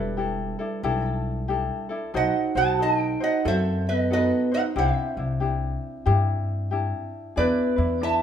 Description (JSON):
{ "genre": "Hawaiian", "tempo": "92 BPM", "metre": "4/4", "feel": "swing 63% on 8ths", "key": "unclear", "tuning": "A4 = 443 Hz", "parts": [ { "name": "lap resonator guitar", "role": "melody", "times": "0.0-8.2 s", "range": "G4 to A5", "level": "-25 LUFS", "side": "right 1 dB", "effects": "none" }, { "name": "vibraphone with soft mallets", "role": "second line", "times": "0.0-8.2 s", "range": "G3 to F#4", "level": "-29 LUFS", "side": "right 4 dB", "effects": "none" }, { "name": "ukulele", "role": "accompaniment", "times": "0.0-8.2 s", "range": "D4 to C5", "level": "-29 LUFS", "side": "left 5 dB", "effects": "none" }, { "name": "upright bass", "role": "bass", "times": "0.0-8.2 s", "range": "E1 to G2", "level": "-26 LUFS", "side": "left 1 dB", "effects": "none" } ], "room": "moderate recital hall reverb, RT60 1.5 s", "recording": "minimal, uncompressed stereo recording", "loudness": "-22 LUFS", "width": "side -9 dB against mid", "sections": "0.0-8.2 A section", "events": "none", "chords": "0.0 Em7; 2.1 B7b9; 4.8 Cadd9; 7.4 E7" }